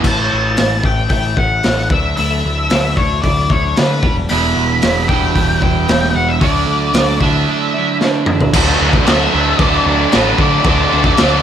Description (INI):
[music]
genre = quiet-loud alternative rock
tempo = 113 BPM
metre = 4/4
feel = straight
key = unclear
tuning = A4 = 435 Hz
[part]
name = twelve-string electric guitar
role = arpeggios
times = 0.0-8.5 s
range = E2 to E4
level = -23 LUFS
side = left 4 dB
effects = lush chorus
[part]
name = cranked stack guitar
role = riff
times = 0.0, 4.3-11.4 s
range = E2 to D4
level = -17 LUFS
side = right 12 dB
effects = overdrive
[part]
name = tight distorted guitar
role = riff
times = 0.0, 8.5-11.4 s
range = D3 to F#4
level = -19 LUFS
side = left 14 dB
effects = distortion
[part]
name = growling picked electric bass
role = bass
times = 0.0-11.4 s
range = E1 to D3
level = -19 LUFS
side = equal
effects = overdrive
[part]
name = raw garage drum kit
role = drums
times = 0.0-11.3 s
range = crash cymbal, hi-hat, kick drum, snare drum, toms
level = -16 LUFS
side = equal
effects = none
[part]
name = octave-fuzz lead guitar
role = melody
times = 0.1-11.4 s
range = B4 to B5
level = -18 LUFS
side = left 2 dB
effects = distortion
[sound]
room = studio reverb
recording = none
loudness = -12 LUFS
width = side -9 dB against mid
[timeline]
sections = 0.0-8.5 A section; 8.5-11.4 B section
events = drum fill 8.0-8.5; lead electric guitar solo 8.5-11.4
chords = 0.0 A; 1.9 Dadd9; 4.0 Em7; 6.4 Dadd9; 8.5 D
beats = | 0.05 0.58 1.11 1.64 | 2.17 2.70 3.23 3.77 | 4.30 4.83 5.36 5.89 | 6.42 6.95 7.48 8.01 | 8.54 9.07 9.60 10.13 | 10.65 11.18